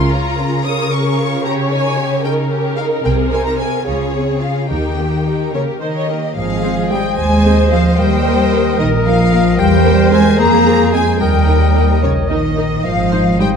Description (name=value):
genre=cinematic, playful, whimsical film cue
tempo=74 BPM (dotted quarters)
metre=6/8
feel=straight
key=Ab major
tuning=A4 = 440 Hz
part: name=rich studio violin section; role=melody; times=0.0-13.5 s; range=Db5 to Eb6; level=-22 LUFS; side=left 4 dB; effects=none
part: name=rich studio violin section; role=second line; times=0.0-12.4 s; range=Bb3 to Db5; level=-22 LUFS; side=left 2 dB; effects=none
part: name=rich studio viola section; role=accompaniment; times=0.0-13.5 s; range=Bb3 to Db5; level=-22 LUFS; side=right 1 dB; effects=none
part: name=rich studio cello section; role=bass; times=0.0-13.6 s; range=C3 to Bb3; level=-19 LUFS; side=right 2 dB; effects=none
part: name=rich studio double bass section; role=bass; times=0.0-0.4, 3.1-13.5 s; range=Ab1 to F2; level=-17 LUFS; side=right 2 dB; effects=none
part: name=hollow concert flute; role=second line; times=5.5-13.6 s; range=Db5 to Bb5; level=-24 LUFS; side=left 2 dB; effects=none
part: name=mellow French horn section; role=sustained chords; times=5.5-13.5 s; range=Db3 to Bb3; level=-18 LUFS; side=left 4 dB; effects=none
part: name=clear oboe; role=second line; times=6.4-13.6 s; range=C5 to Eb5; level=-26 LUFS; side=right 1 dB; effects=none
part: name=dark clarinet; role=second line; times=6.4-13.6 s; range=Ab4 to C5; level=-22 LUFS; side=left 3 dB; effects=none
room=moderate scoring stage reverb, RT60 1.8 s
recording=dark, warm production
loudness=-12 LUFS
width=side -6 dB against mid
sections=0.0-6.4 A section; 6.4-13.6 B section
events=none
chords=0.0 Bbm/Db; 1.4 Eb7/Db; 3.0 Ab/C; 3.9 Dbmaj7; 4.7 Eb; 6.4 Ab; 8.0 Eb; 9.6 C7/E; 10.4 Fm; 11.2 Eb; 12.9 Ab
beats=0.66 | 1.45 2.24 | 3.05 3.87 | 4.70 5.54 | 6.37 7.18 | 7.99 8.79 | 9.59 10.40 | 11.21 12.03 | 12.85